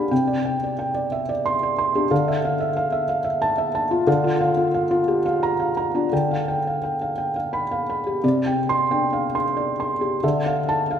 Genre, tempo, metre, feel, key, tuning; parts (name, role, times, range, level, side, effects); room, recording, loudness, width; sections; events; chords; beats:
neoclassical minimalist piano; 84-93 BPM; 3/4; rubato; A4 = 442 Hz
felt-muted upright piano; solo; 0.0-11.0 s; C3 to C6; -20 LUFS; equal
wet concert hall reverb, RT60 2.2 s; recorded in a church or concert hall; -20 LUFS; side -8 dB against mid
0.0-8.2 A section; 8.2-11.0 B section
0.1 Csus2; 2.1 Dmadd9; 4.1 Bb/D; 6.1 G7/D; 8.2 Csus2; 10.2 Dmadd9
| 0.11 0.79 1.46 | 2.11 2.76 3.41 | 4.07 4.73 5.41 | 6.11 6.82 7.53 | 8.23 8.90 9.56 | 10.23 10.89